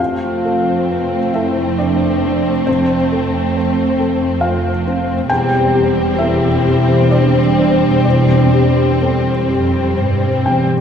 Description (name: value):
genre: cinematic, emotional film score for orchestra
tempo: 62-70 BPM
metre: 3/4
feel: rubato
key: unclear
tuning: A4 = 445 Hz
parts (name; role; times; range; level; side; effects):
- rich symphonic violin section; melody; 0.0-10.7 s; C4; -21 LUFS; left 6 dB; none
- rich symphonic violin section; second line; 0.0-10.7 s; C4; -24 LUFS; equal; none
- felt-muted upright piano; accompaniment; 0.0-10.8 s; E2 to G5; -20 LUFS; left 2 dB; none
- warm symphonic viola section; accompaniment; 0.0-10.7 s; G3 to A3; -24 LUFS; right 2 dB; none
- dark French horn section; sustained chords; 0.0-10.8 s; C4 to G4; -19 LUFS; right 1 dB; none
- rich symphonic cello section; bass; 0.0-10.8 s; E2 to G2; -20 LUFS; right 3 dB; none
- warm symphonic double bass section; bass; 0.0-10.7 s; E1 to F1; -19 LUFS; right 1 dB; none
room: wet scoring stage reverb, RT60 1.4 s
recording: heard from further back in the room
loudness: -12 LUFS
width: side -8 dB against mid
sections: 0.0-10.8 A section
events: none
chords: 0.0 F; 5.3 C/E